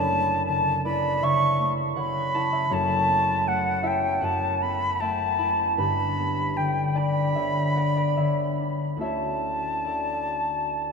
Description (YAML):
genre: classical, impressionist duo for flute and harp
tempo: 70-81 BPM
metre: 4/4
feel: rubato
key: unclear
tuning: A4 = 440 Hz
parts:
  - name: silver concert flute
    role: melody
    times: 0.0-10.9 s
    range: F#5 to C#6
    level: -24 LUFS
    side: left 1 dB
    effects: none
  - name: concert harp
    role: accompaniment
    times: 0.0-10.9 s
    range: F#1 to B5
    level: -26 LUFS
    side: equal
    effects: none
room: wet cathedral reverb, RT60 5.1 s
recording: in a vast, echoing space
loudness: -22 LUFS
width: side -5 dB against mid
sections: 0.0-10.9 A section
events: none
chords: 0.0 F#m7; 2.7 A13/F#; 5.8 Gmaj7; 9.0 Dmaj9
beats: 0.46 1.22 1.98 | 2.74 3.48 4.24 5.02 | 5.78 6.57 7.35 8.16 | 8.99 9.84 10.69